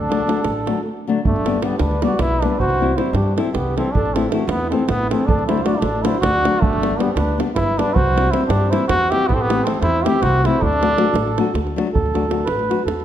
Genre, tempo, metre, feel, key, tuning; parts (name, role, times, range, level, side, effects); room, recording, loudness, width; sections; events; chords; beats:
balkan folk, Balkan wedding band; 315 BPM (eighths); 7/8; straight; D mixolydian; A4 = 439 Hz
trombone with straight mute; melody; 0.0-11.5 s; A3 to G4; -21 LUFS; equal
mellow accordion; second line; 0.0-13.0 s; D4 to E5; -25 LUFS; right 4 dB
upright bass; bass; 0.0-13.0 s; G1 to G2; -23 LUFS; equal
nylon-string guitar; accompaniment; 0.1-12.8 s; D3 to F#4; -22 LUFS; left 4 dB
davul; percussion; 0.1-13.0 s; -23 LUFS; right 3 dB
wet recital hall reverb, RT60 1.5 s; -16 LUFS; side -10 dB against mid
0.0-1.3 A section; 1.3-11.9 B section; 11.9-13.0 C section
accordion solo 11.9-13.0
0.0 D; 1.3 G; 2.6 C; 3.9 Am; 5.3 D; 6.6 G; 8.0 C; 9.3 Am; 10.6 D
0.10 0.29 0.49 0.68 0.87 1.07 | 1.26 1.45 1.64 1.84 2.03 2.22 2.41 | 2.60 2.80 2.99 3.18 3.37 3.56 3.76 | 3.95 4.14 4.33 4.52 4.71 4.90 5.09 | 5.29 5.48 5.67 5.86 6.05 6.24 6.43 | 6.62 6.81 7.00 7.19 7.38 7.57 7.76 | 7.95 8.14 8.33 8.53 8.71 8.90 9.09 | 9.28 9.47 9.66 9.85 10.04 10.23 10.42 | 10.61 10.80 10.99 11.18 11.37 11.56 11.75 | 11.94 12.13 12.32 12.51 12.70 12.89